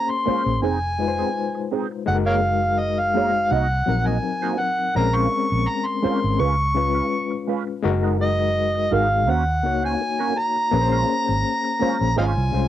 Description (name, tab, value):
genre	soul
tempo	83 BPM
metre	4/4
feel	swing 54% on 16ths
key	unclear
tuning	A4 = 440 Hz
part	overdriven harmonica	melody	0.0-12.7 s	Bb4 to Db6	-22 LUFS	equal	cassette tape
part	overdriven reed electric piano	accompaniment	0.0-12.7 s	Gb3 to Db5	-24 LUFS	left 7 dB	fast tremolo, cassette tape
part	mellow electric guitar	riff	0.1-12.6 s	Ab3 to Eb5	-26 LUFS	right 8 dB	wah, cassette tape
part	vintage muted fingered electric bass	bass	0.3-12.7 s	F1 to Eb2	-23 LUFS	right 1 dB	none
part	warm trombone section	stabs	12.2-12.7 s	F3 to F4	-31 LUFS	right 7 dB	cassette tape
room	light reverb, studio ambience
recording	home recording on cassette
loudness	-19 LUFS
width	side -12 dB against mid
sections	0.0-12.7 A section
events	band accent 10.7-12.7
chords	0.0 Bbm9; 0.6 Fm7; 2.1 Gb69; 3.5 Cm7b5; 5.0 Bbm9; 6.4 Db7; 7.8 Gb69; 9.3 Ebm7; 10.7 Bbm9; 12.2 Dbmaj7/Ab